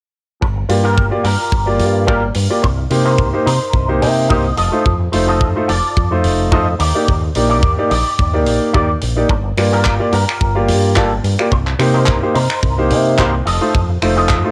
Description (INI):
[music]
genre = nu-disco, nu disco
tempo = 108 BPM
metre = 4/4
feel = swing 54% on 16ths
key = G minor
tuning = A4 = 440 Hz
[part]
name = electric guitar with an envelope filter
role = riff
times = 0.4-14.4 s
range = Eb4 to G5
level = -23 LUFS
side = equal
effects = ensemble chorus, tape echo
[part]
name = fingered electric bass with an envelope filter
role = bass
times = 0.4-14.4 s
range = F1 to C3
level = -20 LUFS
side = equal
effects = none
[part]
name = kick drum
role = drums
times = 0.4-14.4 s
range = none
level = -22 LUFS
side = equal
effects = cassette tape
[part]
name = clear grand piano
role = accompaniment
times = 0.7-14.5 s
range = A3 to D5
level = -20 LUFS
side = equal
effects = sidechain pumping, tape echo
[part]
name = damped 70s drum kit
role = drums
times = 0.7-14.4 s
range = finger snaps, handclaps, hi-hat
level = -27 LUFS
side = equal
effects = cassette tape
[sound]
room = light reverb, small room ambience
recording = home recording on cassette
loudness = -15 LUFS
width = mono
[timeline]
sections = 0.4-14.5 A section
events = clean electric guitar fill 3.7-4.9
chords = 0.4 Gm7; 2.6 Cm7; 4.6 F7; 6.8 Ebmaj7; 9.3 Gm7; 11.5 Cm7; 13.5 F7